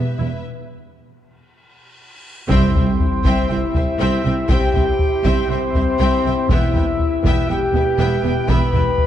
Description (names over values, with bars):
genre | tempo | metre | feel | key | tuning
cinematic, epic orchestral film score | 120 BPM | 4/4 | straight | C major | A4 = 440 Hz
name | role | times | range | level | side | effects
rich symphonic violin section | melody | 0.0-8.8 s | E5 to G5 | -32 LUFS | left 4 dB | none
warm symphonic violin section | second line | 0.0-8.8 s | B4 to E5 | -32 LUFS | left 1 dB | none
mellow French horn section | sustained chords | 0.0-9.1 s | B3 to B4 | -22 LUFS | left 2 dB | none
dark symphonic double bass section | bass | 0.0-8.8 s | E1 to C2 | -23 LUFS | right 2 dB | none
rich symphonic cello section | bass | 0.0-8.8 s | C2 to E2 | -25 LUFS | right 2 dB | none
rich studio viola section | accompaniment | 0.2-8.8 s | B3 to E4 | -28 LUFS | equal | none
cymbal swell and sub drop | sound effects | 2.0-4.5 s | none | -29 LUFS | left 1 dB | none
dark woodwind section | sustained chords | 2.5-9.1 s | E4 to G5 | -30 LUFS | equal | none
mellow trumpet section | stabs | 2.5-9.1 s | C5 to B5 | -26 LUFS | right 1 dB | none
solo taiko drums | drums | 2.5-9.1 s | none | -20 LUFS | left 1 dB | none
timpani | percussion | 2.5-3.2 s | C3 | -26 LUFS | equal | none
room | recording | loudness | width
moderate concert hall reverb, RT60 2.1 s | dark, warm production | -15 LUFS | side -11 dB against mid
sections
0.0-2.5 A section; 2.5-9.1 B section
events
break 0.5-2.5; cymbal swell 2.0-2.5; band accent 2.5-3.0; impact 2.5-4.5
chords
0.0 Em; 2.5 C; 6.5 Em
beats
| 0.46 0.97 1.48 1.99 | 2.50 3.00 3.50 4.00 | 4.50 5.00 5.50 6.00 | 6.50 7.00 7.49 7.99 | 8.49 8.98